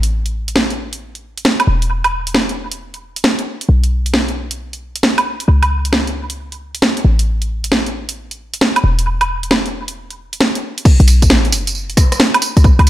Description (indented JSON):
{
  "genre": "UK garage, two-step garage",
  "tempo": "134 BPM",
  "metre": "4/4",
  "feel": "swing 66% on 16ths",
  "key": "unclear",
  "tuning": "A4 = 438 Hz",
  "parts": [
    { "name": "short 808-style bass", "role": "bass", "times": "0.0-12.9 s", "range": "E1 to C#2", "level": "-15 LUFS", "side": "equal", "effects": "none" },
    { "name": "house drum kit", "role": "drums", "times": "0.0-12.9 s", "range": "crash cymbal, hi-hat, rim click, snare drum, tambourine, woodblock", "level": "-15 LUFS", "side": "right 1 dB", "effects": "analog delay" },
    { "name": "electronic kick drum", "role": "drums", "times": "10.9-12.8 s", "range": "none", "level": "-10 LUFS", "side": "equal", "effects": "none" }
  ],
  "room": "light reverb",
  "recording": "echo-heavy mix",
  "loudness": "-13 LUFS",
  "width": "side -14 dB against mid",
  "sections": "0.0-10.9 A section; 10.9-12.9 B section",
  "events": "drop 10.9-12.9",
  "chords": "none"
}